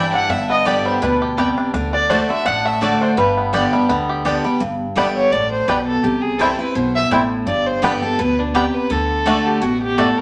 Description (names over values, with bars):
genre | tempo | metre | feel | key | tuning
bluegrass | 168 BPM | 4/4 | swing 55% on 8ths | G major | A4 = 440 Hz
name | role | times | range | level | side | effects
bluegrass banjo | melody | 0.0-10.1 s | D3 to G4 | -24 LUFS | equal | none
dark fiddle | melody | 0.0-10.2 s | D4 to G5 | -23 LUFS | equal | none
lap resonator guitar | second line | 0.0-3.4 s | B4 to G5 | -26 LUFS | equal | none
picked steel-string acoustic guitar | accompaniment | 0.0-10.2 s | G2 to G4 | -22 LUFS | equal | none
mandolin | stabs | 0.0-10.1 s | A3 to A5 | -26 LUFS | equal | none
upright bass | bass | 0.0-10.1 s | G1 to D2 | -30 LUFS | equal | none
room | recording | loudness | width
wet studio reverb, RT60 0.9 s | none | -18 LUFS | mono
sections
0.0-4.6 A section; 4.6-10.2 B section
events
none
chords
0.3 G; 1.7 D; 3.2 G; 6.0 C; 7.5 G; 8.9 D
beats
| 0.30 0.66 1.02 1.38 | 1.74 2.10 2.45 2.81 | 3.17 3.53 3.89 4.25 | 4.61 4.97 5.33 5.68 | 6.04 6.40 6.76 7.12 | 7.47 7.83 8.19 8.54 | 8.90 9.26 9.62 9.97